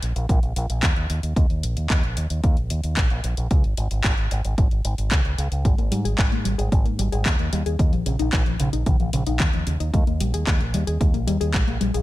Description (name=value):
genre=italo disco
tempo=112 BPM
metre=4/4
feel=straight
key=unclear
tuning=A4 = 440 Hz
part: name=fingered electric bass with an envelope filter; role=bass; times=0.0-12.0 s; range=Ab1 to Ab2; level=-24 LUFS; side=equal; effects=tube saturation
part: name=house drum kit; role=drums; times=0.0-12.0 s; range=handclaps, hi-hat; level=-28 LUFS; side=left 1 dB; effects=overdrive, small room ambience, gated reverb
part: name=electronic kick drum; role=drums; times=0.3-11.7 s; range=none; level=-20 LUFS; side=equal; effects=overdrive, small room ambience
part: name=warbly dusty pluck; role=arpeggios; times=5.7-12.0 s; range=Db3 to Ab4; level=-27 LUFS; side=left 3 dB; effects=chorus, ping-pong delay
room=digital ambience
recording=none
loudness=-19 LUFS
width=side -16 dB against mid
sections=0.0-12.0 A section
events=none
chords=0.0 Eb5; 3.5 Db5; 5.7 Ab5; 7.8 Eb5; 9.9 Ab5